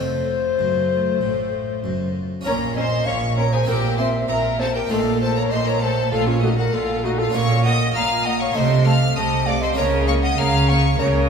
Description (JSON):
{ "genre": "classical, baroque-style concerto movement with solo episodes", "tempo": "98 BPM", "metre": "4/4", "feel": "straight", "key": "Bb minor", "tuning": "A4 = 440 Hz", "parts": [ { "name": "baroque flute", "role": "melody", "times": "0.0-11.3 s", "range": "F4 to Bb5", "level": "-23 LUFS", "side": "left 2 dB", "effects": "none" }, { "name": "clear chamber violin section", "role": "melody", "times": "0.0-11.1 s", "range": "F4 to F6", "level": "-28 LUFS", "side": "left 3 dB", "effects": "none" }, { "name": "rich chamber violin section", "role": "second line", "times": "0.0-11.3 s", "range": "Db4 to F5", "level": "-27 LUFS", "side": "left 2 dB", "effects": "none" }, { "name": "harpsichord", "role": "accompaniment", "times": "0.0-11.3 s", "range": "F2 to Bb4", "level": "-28 LUFS", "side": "equal", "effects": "none" }, { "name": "rich chamber viola section", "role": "accompaniment", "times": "0.0-11.1 s", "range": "A3 to Db4", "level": "-30 LUFS", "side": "left 2 dB", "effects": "none" }, { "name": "rich chamber double bass section", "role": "bass", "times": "0.0-11.3 s", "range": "F1 to Db2", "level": "-23 LUFS", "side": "right 2 dB", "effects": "none" }, { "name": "warm studio cello section", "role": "bass", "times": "0.0-11.3 s", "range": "F2 to Db3", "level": "-25 LUFS", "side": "right 2 dB", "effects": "none" } ], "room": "wet scoring stage reverb, RT60 1.8 s", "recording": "recorded in a church or concert hall", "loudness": "-17 LUFS", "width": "side -6 dB against mid", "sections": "0.0-2.5 A section; 2.5-11.3 B section", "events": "none", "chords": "0.0 F; 2.5 Bbm; 3.7 C7/Bb; 4.9 Fadd11/Bb; 7.3 Bbm; 8.6 Adim/C; 9.8 Bbm/Db" }